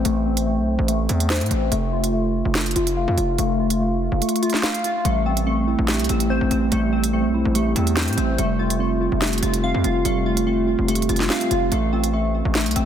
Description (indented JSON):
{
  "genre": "hip hop, drill",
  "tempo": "144 BPM",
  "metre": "4/4",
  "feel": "half-time",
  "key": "A minor",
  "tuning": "A4 = 440 Hz",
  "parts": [
    { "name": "glassy digital keys", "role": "arpeggios", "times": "0.0-12.9 s", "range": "A3 to F5", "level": "-22 LUFS", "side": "left 1 dB", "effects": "chorus, phaser, low-pass filter, digital delay" },
    { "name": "distorted 808-style bass", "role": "bass", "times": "0.0-12.9 s", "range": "F1 to A2", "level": "-23 LUFS", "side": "equal", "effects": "distortion" },
    { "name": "drill drum kit", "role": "drums", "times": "0.1-12.9 s", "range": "hi-hat, snare drum", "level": "-26 LUFS", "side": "right 1 dB", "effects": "none" },
    { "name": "mellow tine electric piano", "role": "accompaniment", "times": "5.1-11.7 s", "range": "G3 to G4", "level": "-25 LUFS", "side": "right 3 dB", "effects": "medium stereo tremolo, low-pass filter" }
  ],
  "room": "light reverb, digital ambience",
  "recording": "dense, heavily limited modern master",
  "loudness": "-18 LUFS",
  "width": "side -9 dB against mid",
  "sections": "0.0-12.9 A section",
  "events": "filter sweep 0.0-5.1; kick muted 4.2-5.1",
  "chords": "0.0 Am; 1.7 F; 5.1 Am7; 8.4 Fadd9; 11.7 Am",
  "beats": "| 0.05 0.47 0.88 1.30 | 1.72 2.13 2.55 2.97 | 3.38 3.80 4.22 4.63 | 5.05 5.47 5.88 6.30 | 6.72 7.13 7.55 7.97 | 8.38 8.80 9.22 9.63 | 10.05 10.47 10.88 11.30 | 11.72 12.13 12.55"
}